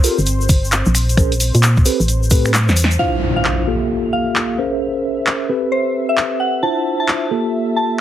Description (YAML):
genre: UK garage, two-step garage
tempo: 132 BPM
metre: 4/4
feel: swing 64% on 16ths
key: D minor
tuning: A4 = 442 Hz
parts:
  - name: warm analog pad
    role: sustained chords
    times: 0.0-8.0 s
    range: C4 to E5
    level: -30 LUFS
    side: left 1 dB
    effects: chorus, vintage 12-bit sampler grit, sidechain pumping
  - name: mellow tine electric piano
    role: stabs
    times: 0.0-8.0 s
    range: Bb3 to C5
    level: -20 LUFS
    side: equal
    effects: medium stereo tremolo, low-pass filter, ping-pong delay
  - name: punchy analog drum machine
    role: drums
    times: 0.0-7.2 s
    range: finger snaps, handclaps, hi-hat, snare drum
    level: -19 LUFS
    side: equal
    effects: none
  - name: tube shaker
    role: percussion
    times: 0.0-3.0 s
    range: none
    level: -24 LUFS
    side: left 2 dB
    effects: none
  - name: organ-like FM bass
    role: bass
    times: 0.2-3.0 s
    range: G1 to Bb2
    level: -15 LUFS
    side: equal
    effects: tube saturation
  - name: electronic kick drum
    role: drums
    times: 0.5-2.4 s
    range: none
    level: -13 LUFS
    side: equal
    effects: none
  - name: soft synth bell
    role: melody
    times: 3.0-7.9 s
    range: C5 to A5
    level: -21 LUFS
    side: equal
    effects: chorus, ping-pong delay
  - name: impact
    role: sound effects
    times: 3.0-4.8 s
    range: none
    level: -23 LUFS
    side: equal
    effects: none
room: moderate studio reverb, RT60 0.5 s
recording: heavily compressed radio sound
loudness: -14 LUFS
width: side -11 dB against mid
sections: 0.0-3.0 A section; 3.0-8.0 B section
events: drum fill 2.5-3.0; band accent 2.8; impact 3.0-4.8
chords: 0.0 Gm9; 0.9 Bbm9; 1.9 Am9; 3.0 Dm9; 3.7 Gm9; 4.6 Bbm9; 5.5 Am9; 6.6 Dm9; 7.3 Gm9